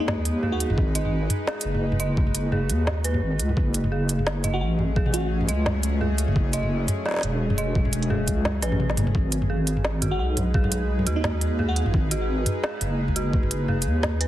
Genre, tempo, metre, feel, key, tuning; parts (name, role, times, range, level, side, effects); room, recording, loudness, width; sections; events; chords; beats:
half-time drum and bass; 172 BPM; 4/4; swing 56% on 16ths, half-time; G# phrygian; A4 = 440 Hz
bell-like FM electric piano; melody; 0.0-0.8, 4.5-5.4, 10.1-11.9 s; D#4 to F#4; -32 LUFS; equal; chorus, phaser, ping-pong delay
bowed-like drone; sustained chords; 0.0-14.3 s; F#3 to B4; -32 LUFS; left 1 dB; built-in reverb, sidechain pumping
dark detuned synth bell; arpeggios; 0.0-14.3 s; F#4 to D#5; -33 LUFS; right 3 dB; chorus, tape echo
deep soft wobble bass; bass; 0.0-14.3 s; E1 to D#2; -24 LUFS; equal; chorus
organic electronic drum kit; drums; 0.1-14.3 s; hi-hat, snare drum, toms; -27 LUFS; equal
electronic kick drum; drums; 0.8-13.4 s; -23 LUFS; equal; overdrive
light reverb; heavily compressed radio sound; -21 LUFS; side -13 dB against mid
0.0-14.3 A section
drum fill 8.6-9.1
0.0 G#m; 3.6 F#m; 9.1 G#m
0.08 0.43 | 0.78 1.12 1.47 1.82 | 2.17 2.52 2.87 3.22 | 3.57 3.92 4.26 4.61 | 4.96 5.31 5.66 6.01 | 6.36 6.71 7.05 7.40 | 7.75 8.10 8.45 8.80 | 9.15 9.50 9.85 10.20 | 10.54 10.89 11.24 11.59 | 11.94 12.29 12.64 12.99 | 13.33 13.68 14.03